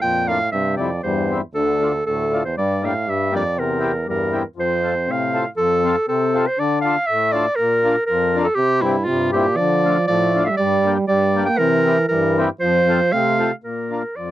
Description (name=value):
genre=alpine folk, alpine dance band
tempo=119 BPM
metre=2/4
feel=straight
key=F major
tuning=A4 = 440 Hz
part: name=clear clarinet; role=melody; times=0.0-14.3 s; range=E4 to G5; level=-19 LUFS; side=right 1 dB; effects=none
part: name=warm euphonium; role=second line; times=0.0-5.5, 8.6-13.5 s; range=D2 to Bb3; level=-22 LUFS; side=right 4 dB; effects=none
part: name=mellow accordion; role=accompaniment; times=0.0-14.3 s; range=F2 to Bb4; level=-22 LUFS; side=left 5 dB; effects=none
room=light reverb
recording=dry, close 1970s-style studio recording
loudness=-16 LUFS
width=side -14 dB against mid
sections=0.0-5.6 A section; 5.6-13.6 A section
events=none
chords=0.0 Bb; 0.5 C; 1.5 Dm; 2.6 Gm; 3.6 C7; 4.6 F; 6.6 Dm; 7.6 Bb; 8.6 C; 9.6 Dm; 10.6 Gm; 11.6 C7; 12.6 F; 13.6 Bb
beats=0.02 | 0.52 1.03 | 1.54 2.05 | 2.56 3.06 | 3.56 4.06 | 4.56 5.07 | 5.57 6.08 | 6.59 7.09 | 7.59 8.09 | 8.59 9.10 | 9.61 10.11 | 10.61 11.11 | 11.61 12.11 | 12.62 13.13 | 13.65 14.17